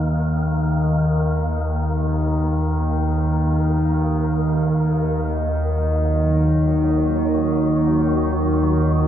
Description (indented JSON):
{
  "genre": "dark ambient drone",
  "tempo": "free time",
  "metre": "none",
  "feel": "none",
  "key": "Eb minor",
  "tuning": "A4 = 440 Hz",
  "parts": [
    { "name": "analog drone", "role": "drone", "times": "0.0-9.1 s", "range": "Eb2 to Eb3", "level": "-18 LUFS", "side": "equal", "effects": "chorus" },
    { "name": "wind-like tuned noise texture", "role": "texture", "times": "0.0-9.1 s", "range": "Gb3 to Bb4", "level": "-28 LUFS", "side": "equal", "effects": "built-in reverb" },
    { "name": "deep dark ambient pad", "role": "sustained chords", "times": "5.9-9.1 s", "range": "Eb4 to Eb5", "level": "-23 LUFS", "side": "right 2 dB", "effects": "chorus, built-in reverb" }
  ],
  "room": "moderate huge ambient reverb, RT60 7.8 s",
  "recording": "in a vast, echoing space",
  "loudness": "-17 LUFS",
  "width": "side -10 dB against mid",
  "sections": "0.0-9.1 A section",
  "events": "none",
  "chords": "0.0 Ebm"
}